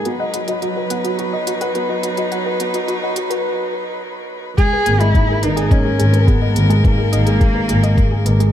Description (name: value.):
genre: piano and strings electronica.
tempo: 106 BPM.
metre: 4/4.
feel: straight.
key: unclear.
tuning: A4 = 438 Hz.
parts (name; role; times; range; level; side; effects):
warm string quartet; sustained chords; 0.0-8.5 s; F#3 to B4; -26 LUFS; left 2 dB; sidechain pumping.
felt-muted upright piano; riff; 0.0-8.5 s; F#3 to D#5; -21 LUFS; right 2 dB; ping-pong delay.
soft round pluck; arpeggios; 0.1-8.5 s; F#4 to F#5; -28 LUFS; left 4 dB; chorus, sidechain pumping, ping-pong delay.
electronic hi-hat; drums; 0.1-8.5 s; none; -29 LUFS; right 2 dB; none.
dark cello; melody; 4.6-8.5 s; A#3 to G#4; -20 LUFS; left 1 dB; none.
electronic kick drum; drums; 4.6-8.1 s; none; -15 LUFS; equal; overdrive.
warm studio double bass section; bass; 4.9-8.5 s; G#1; -16 LUFS; equal; tube saturation, sidechain pumping.
room: light reverb, small room ambience.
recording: high-pass filter.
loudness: -14 LUFS.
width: side -10 dB against mid.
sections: 0.0-4.6 A section; 4.6-8.5 B section.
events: build-up 0.0-4.6; break 3.5-4.6; drop 4.6-8.5.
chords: 0.1 B; 4.6 G#madd9.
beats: | 0.06 0.62 1.19 1.75 | 2.32 2.89 3.45 4.02 | 4.58 5.15 5.72 6.28 | 6.85 7.41 7.98.